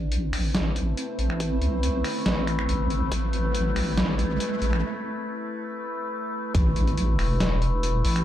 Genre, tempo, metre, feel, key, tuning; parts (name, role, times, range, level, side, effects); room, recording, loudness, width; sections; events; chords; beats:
deep dubstep; 140 BPM; 4/4; half-time; A minor; A4 = 441 Hz
overtone-sweeping drone; sustained chords; 0.0-8.2 s; A3 to B4; -30 LUFS; left 2 dB; chorus, built-in reverb
deep soft wobble bass; bass; 0.0-8.2 s; E1 to C2; -25 LUFS; equal; chorus
riser and impact; sound effects; 1.7-8.2 s; -32 LUFS; right 1 dB
flickering grainy texture; texture; 0.3-4.8 s; C4; -34 LUFS; right 1 dB; built-in reverb
trip hop sampler-style drum kit; drums; 0.1-8.2 s; finger snaps, hi-hat, snare drum; -29 LUFS; equal
electronic kick drum; drums; 1.4-3.2, 6.5-6.6 s; -23 LUFS; equal; high-pass filter on kick, high-pass filter on room
light reverb; dark, warm production; -23 LUFS; side -12 dB against mid
0.0-6.5 A section; 6.5-8.2 B section
build-up 0.0-6.5; riser 1.7-4.8; break 4.8-6.5; drop 6.5-8.2; impact 6.5-8.2
0.0 Amadd9; 6.5 Asus2
0.12 0.55 0.97 | 1.40 1.83 2.26 2.69 | 3.12 3.55 3.97 4.40 | 4.83 5.26 5.69 6.12 | 6.55 6.97 7.40 7.83